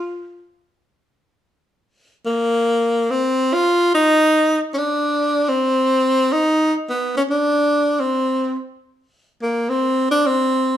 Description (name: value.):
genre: jazz.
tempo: free time.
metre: none.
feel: none.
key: unclear.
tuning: A4 = 440 Hz.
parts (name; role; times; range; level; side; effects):
breathy tenor saxophone; solo; 0.0-10.8 s; Bb3 to F4; -16 LUFS; equal; none.
room: wet large studio reverb, RT60 0.9 s.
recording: band playing live in one room.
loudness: -16 LUFS.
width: side -11 dB against mid.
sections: 0.0-9.0 A section; 9.0-10.8 B section.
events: tenor saxophone solo 9.0-10.8.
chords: none.